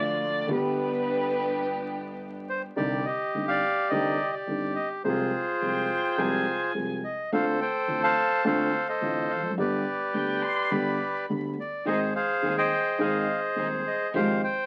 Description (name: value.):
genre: tango.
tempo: 106 BPM.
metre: 4/4.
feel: rubato.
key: C harmonic minor.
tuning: A4 = 440 Hz.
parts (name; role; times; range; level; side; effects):
warm violin; second line; 0.0-2.2, 5.6-11.4 s; B4 to C6; -33 LUFS; equal; none.
dark concert grand piano; accompaniment; 0.0-14.4 s; Eb1 to A4; -32 LUFS; equal; none.
rich studio string section; stabs; 0.0-2.7, 11.9-14.4 s; Ab3 to Ab4; -38 LUFS; equal; none.
upright bass; bass; 0.0-14.4 s; E1 to Eb2; -48 LUFS; equal; none.
bandoneon; melody; 2.5-14.7 s; F4 to A5; -29 LUFS; equal; none.
room: moderate studio reverb, RT60 0.8 s.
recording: very old 78 rpm record, vinyl crackle.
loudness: -27 LUFS.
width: mono.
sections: 0.0-2.8 A section; 2.8-14.7 B section.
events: violin solo 0.0-2.8.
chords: 0.5 G; 2.8 Cmadd9; 5.1 Fm/C; 7.3 Dm7; 9.6 G; 11.9 Ab; 14.1 Fmadd9/Ab.